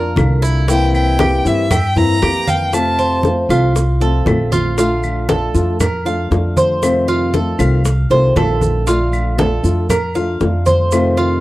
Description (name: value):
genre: latin, Cuban son and guajira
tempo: 117 BPM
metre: 4/4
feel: straight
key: Bb major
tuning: A4 = 440 Hz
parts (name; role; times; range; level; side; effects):
- flamenco guitar; accompaniment; 0.0-11.4 s; C3 to F4; -20 LUFS; left 3 dB; none
- Cuban tres; arpeggios; 0.0-11.4 s; E4 to F5; -19 LUFS; right 2 dB; none
- upright bass; bass; 0.0-11.4 s; Bb1 to G2; -17 LUFS; equal; none
- bongos; percussion; 0.2-11.2 s; none; -22 LUFS; left 4 dB; none
- claves; percussion; 0.2-11.2 s; none; -30 LUFS; left 2 dB; none
- congas; percussion; 0.2-11.4 s; none; -21 LUFS; equal; none
- maracas; percussion; 0.2-11.4 s; none; -30 LUFS; right 7 dB; none
- rich violin; melody; 0.7-3.2 s; E5 to Bb5; -19 LUFS; equal; none
room: small room ambience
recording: dry, close 1970s-style studio recording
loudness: -13 LUFS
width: side -17 dB against mid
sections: 0.0-4.8 A section; 4.8-11.4 B section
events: none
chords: 0.0 Bb; 0.7 C7; 2.7 F; 4.8 Bbmaj7; 6.8 F7; 8.9 Bbmaj7